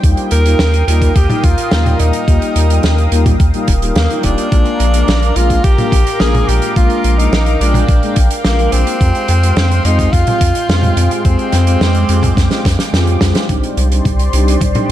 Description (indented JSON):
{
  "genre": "synthwave",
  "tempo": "107 BPM",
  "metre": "4/4",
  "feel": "straight",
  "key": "unclear",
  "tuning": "A4 = 441 Hz",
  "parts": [
    { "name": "lush unison pad", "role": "sustained chords", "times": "0.0-14.9 s", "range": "Ab3 to Eb6", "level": "-21 LUFS", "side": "equal", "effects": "chorus, phaser, sidechain pumping" },
    { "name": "mellow synth brass", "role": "stabs", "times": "0.0-14.9 s", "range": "G3 to Ab4", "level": "-20 LUFS", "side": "left 2 dB", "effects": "chorus" },
    { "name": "round analog bass", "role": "bass", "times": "0.0-14.9 s", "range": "Eb1 to F2", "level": "-13 LUFS", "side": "equal", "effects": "none" },
    { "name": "electronic kick drum", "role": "drums", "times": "0.0-14.7 s", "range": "none", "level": "-14 LUFS", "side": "equal", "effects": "overdrive" },
    { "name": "loose indie drum kit", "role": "drums", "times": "0.0-14.9 s", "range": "hi-hat, snare drum, toms", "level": "-19 LUFS", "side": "right 1 dB", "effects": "none" },
    { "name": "clear tenor saxophone", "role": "melody", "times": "0.3-12.9 s", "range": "Bb3 to Bb4", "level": "-19 LUFS", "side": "right 1 dB", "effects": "ping-pong delay" }
  ],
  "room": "light reverb, studio ambience",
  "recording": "dark, warm production",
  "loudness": "-10 LUFS",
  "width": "side -12 dB against mid",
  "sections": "0.0-13.5 A section; 13.5-14.9 B section",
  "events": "drum fill 12.4-13.5, 13.5-14.9",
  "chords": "0.0 Ebadd9; 4.5 Bb7; 9.0 Fmadd9; 13.5 Cmadd9"
}